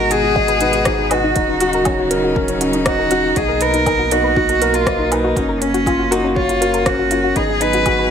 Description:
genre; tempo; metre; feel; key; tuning
piano and strings electronica; 120 BPM; 4/4; straight; Eb minor; A4 = 440 Hz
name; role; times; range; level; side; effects
rich cello; melody; 0.0-8.1 s; Db4 to Cb5; -19 LUFS; equal; none
warm string quartet; sustained chords; 0.0-8.1 s; Cb3 to Ab4; -24 LUFS; equal; sidechain pumping
soft round pluck; arpeggios; 0.0-8.0 s; Db4 to Cb5; -24 LUFS; left 4 dB; chorus, sidechain pumping, ping-pong delay
warm concert grand piano; riff; 0.0-8.1 s; Db4 to Eb5; -19 LUFS; equal; ping-pong delay
warm sub bass; bass; 0.0-8.1 s; Eb1 to B1; -26 LUFS; equal; sidechain pumping
organic electronic drum kit; drums; 0.1-8.0 s; hi-hat, rim click, woodblock; -23 LUFS; right 1 dB; studio reverb
electronic kick drum; drums; 0.4-8.0 s; none; -24 LUFS; equal; overdrive, studio reverb
room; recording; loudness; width
light reverb; none; -14 LUFS; side -8 dB against mid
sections
0.0-8.1 A section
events
none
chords
0.0 Abm7; 1.4 Ebm7; 3.4 Bmaj7; 5.4 Gbmaj7; 7.4 Abm7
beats
0.36 0.86 | 1.36 1.86 2.36 2.86 | 3.36 3.86 4.36 4.86 | 5.36 5.86 6.36 6.86 | 7.36 7.86

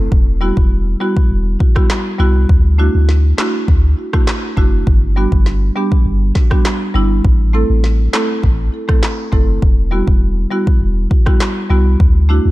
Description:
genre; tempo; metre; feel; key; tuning
dancehall; 101 BPM; 4/4; straight; unclear; A4 = 440 Hz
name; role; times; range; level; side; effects
punchy sub bass; bass; 0.0-12.5 s; E1 to D2; -14 LUFS; equal; none
afro-pop drum kit; drums; 0.1-12.1 s; handclaps, kick drum, rim click, snare drum; -14 LUFS; equal; none
marimba with medium mallets; accompaniment; 0.4-12.4 s; G3 to A4; -19 LUFS; right 1 dB; sidechain pumping
room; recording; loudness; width
digital ambience; dark, warm production; -11 LUFS; side -18 dB against mid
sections
0.0-12.5 A section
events
none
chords
0.1 Emadd9; 2.5 Dadd9; 4.9 Gmaj7; 7.2 Am; 9.6 Emadd9; 12.0 Dadd9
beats
| 0.12 0.71 1.31 1.90 | 2.49 3.09 3.68 4.28 | 4.87 5.46 6.06 6.65 | 7.25 7.84 8.44 9.03 | 9.62 10.22 10.81 11.40 | 12.00

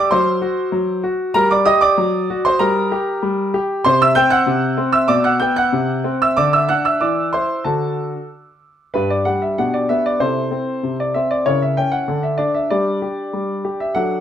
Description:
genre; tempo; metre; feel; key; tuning
classical-period piano sonatina; 96 BPM; 2/4; straight; G minor, G major from 3.8 s; A4 = 440 Hz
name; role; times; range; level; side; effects
clear concert grand piano; solo; 0.0-14.2 s; G2 to G6; -15 LUFS; equal; none
room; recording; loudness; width
moderate large studio reverb, RT60 1.0 s; dark, warm production; -15 LUFS; side -9 dB against mid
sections
0.0-8.9 A section; 8.9-14.2 B section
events
none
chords
0.1 N.C.; 1.4 Gm; 2.0 D7/F#; 2.6 Gm; 3.8 C; 5.1 G/B; 5.7 C; 6.4 D; 7.0 C/E; 7.6 D; 8.9 G5; 9.6 G/B; 10.2 Am/C; 11.5 C#dim7; 12.1 D5; 12.7 G5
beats
| 0.11 0.73 | 1.36 1.98 | 2.60 3.22 | 3.85 4.47 | 5.09 5.72 | 6.36 7.00 | 7.64 8.29 | 8.94 9.57 | 10.21 10.84 | 11.47 12.10 | 12.72 13.34 | 13.96

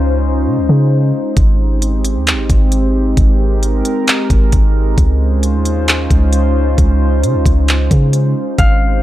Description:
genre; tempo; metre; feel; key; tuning
hip hop, atmospheric cloud-rap; 133 BPM; 4/4; half-time; unclear; A4 = 440 Hz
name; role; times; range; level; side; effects
warbly tape-like pad; sustained chords; 0.0-9.0 s; Ab3 to C5; -18 LUFS; equal; chorus, built-in reverb, sidechain pumping
soft 808-style bass; bass; 0.0-9.0 s; Ab1 to Db3; -13 LUFS; equal; none
smooth R&B drum kit; drums; 1.4-8.7 s; handclaps, hi-hat, kick drum; -13 LUFS; equal; none
concert harp; melody; 8.6-9.0 s; F5; -18 LUFS; left 4 dB; low-pass filter
room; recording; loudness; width
digital ambience; dry, gritty hardware recording; -11 LUFS; side -14 dB against mid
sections
0.0-8.6 A section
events
none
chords
0.0 Dbmaj9; 1.4 Abmaj7; 5.0 Dbmaj9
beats
0.01 0.47 0.92 | 1.37 1.82 2.27 2.72 | 3.17 3.62 4.07 4.53 | 4.98 5.43 5.88 6.33 | 6.78 7.23 7.68 8.13 | 8.59

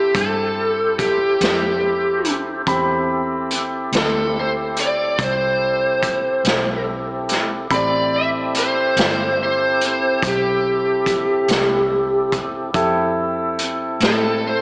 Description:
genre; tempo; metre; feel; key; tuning
slow blues; 48 BPM (dotted quarters); 12/8; straight; A minor; A4 = 443 Hz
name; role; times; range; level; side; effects
lead guitar through a small cranked amp; melody; 0.0-14.6 s; G4 to E5; -18 LUFS; equal; overdrive, slapback echo
clear concert grand piano; accompaniment; 0.0-14.6 s; C4 to B5; -24 LUFS; equal; slapback echo
tonewheel organ; sustained chords; 0.0-14.6 s; C4 to C5; -25 LUFS; equal; slow rotary speaker, overdrive, chorus vibrato
vintage muted fingered electric bass; bass; 0.0-14.6 s; G1 to A2; -30 LUFS; equal; none
vintage drum kit; drums; 0.1-14.2 s; hi-hat, kick drum, snare drum; -22 LUFS; equal; none
room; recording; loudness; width
wet concert hall reverb, RT60 2.3 s; big arena sound, small speaker sound; -16 LUFS; side -35 dB against mid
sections
0.0-14.6 A section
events
none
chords
0.0 Am7; 12.7 Fmaj7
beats
0.15 1.41 | 2.67 3.93 5.19 6.45 | 7.71 8.97 10.23 11.49 | 12.75 14.01

